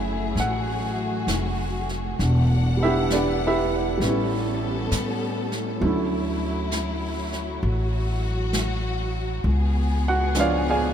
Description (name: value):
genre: jazz ballad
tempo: 66 BPM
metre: 4/4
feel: swing 66% on 8ths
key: F# minor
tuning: A4 = 441 Hz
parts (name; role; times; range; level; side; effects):
- warm baby grand piano; accompaniment; 0.0-10.9 s; E#3 to G#5; -26 LUFS; right 2 dB; none
- warm symphonic string section; sustained chords; 0.0-10.9 s; E3 to F#5; -29 LUFS; left 2 dB; none
- upright bass; bass; 0.0-10.9 s; E1 to A2; -25 LUFS; equal; none
- jazz brush drum kit; drums; 0.4-10.9 s; brushed snare drum, hi-hat, snare drum; -34 LUFS; equal; none
room: moderate cathedral reverb, RT60 6.5 s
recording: in a vast, echoing space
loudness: -21 LUFS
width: side -9 dB against mid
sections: 0.0-10.9 A section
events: none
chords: 0.0 F#m9; 2.2 Em9; 4.0 A9; 5.8 Dmaj9; 9.5 C#7b9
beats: 0.38 1.29 | 2.20 3.11 4.02 4.92 | 5.83 6.73 7.64 8.54 | 9.45 10.36